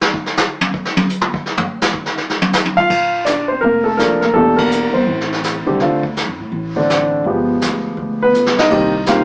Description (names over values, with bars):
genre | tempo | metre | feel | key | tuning
jazz piano trio | 166 BPM | 4/4 | swing 64% on 8ths | Bb major | A4 = 438 Hz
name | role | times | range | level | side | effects
vintage brush drum kit | drums | 0.0-9.2 s | brushed snare drum, crash cymbal, hi-hat, kick drum, ride cymbal, snare drum, toms | -20 LUFS | equal | none
warm grand piano | melody | 2.8-9.2 s | D3 to F5 | -17 LUFS | equal | none
upright bass | bass | 2.9-9.2 s | E1 to A2 | -25 LUFS | equal | none
room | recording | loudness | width
moderate studio ambience, RT60 0.5 s | band playing live in one room, small speaker sound | -16 LUFS | mono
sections
0.0-2.9 A section; 2.9-9.2 B section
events
grand piano solo 0.0-2.9; drum solo 0.0-2.9; band accent 4.5; drum fill 8.3-8.7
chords
0.0 N.C.; 2.9 Bbmaj7; 4.4 Em7b5; 5.1 Am; 5.8 D7(no3); 7.3 G7b9; 8.7 Cm7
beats
| 0.02 0.38 0.74 1.10 | 1.46 1.82 2.18 2.54 | 2.91 3.27 3.63 3.99 | 4.35 4.72 5.08 5.44 | 5.80 6.17 6.53 6.89 | 7.25 7.62 7.98 8.34 | 8.70 9.06